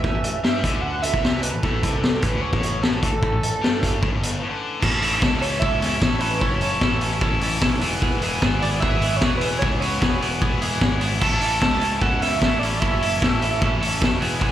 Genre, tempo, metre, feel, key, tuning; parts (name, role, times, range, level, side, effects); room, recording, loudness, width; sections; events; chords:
indie rock; 150 BPM; 4/4; straight; A major; A4 = 441 Hz
pulse-width lead; melody; 0.0-14.2 s; A4 to A5; -27 LUFS; right 3 dB; chorus, slapback echo
cranked stack guitar; riff; 0.0-14.5 s; E3 to A4; -27 LUFS; right 5 dB; overdrive, lush chorus, slapback echo, analog delay
overdriven electric guitar; riff; 0.0-14.5 s; G2 to E4; -28 LUFS; left 8 dB; slapback echo
fuzz picked electric bass; bass; 0.0-14.5 s; E1 to G2; -27 LUFS; equal; overdrive
vintage drum kit; drums; 0.0-14.5 s; crash cymbal, hi-hat, kick drum, snare drum; -22 LUFS; equal
combo organ; sustained chords; 4.8-14.5 s; B4 to E6; -39 LUFS; left 2 dB
glockenspiel with hard plastic mallets; second line; 5.4-14.2 s; G#5 to E6; -38 LUFS; left 4 dB
studio reverb; live gig heard through the venue's PA, club reverb; -18 LUFS; side -12 dB against mid
0.0-4.8 A section; 4.8-14.5 B section
break 4.4-4.8
0.0 A; 7.8 Eadd9; 11.2 A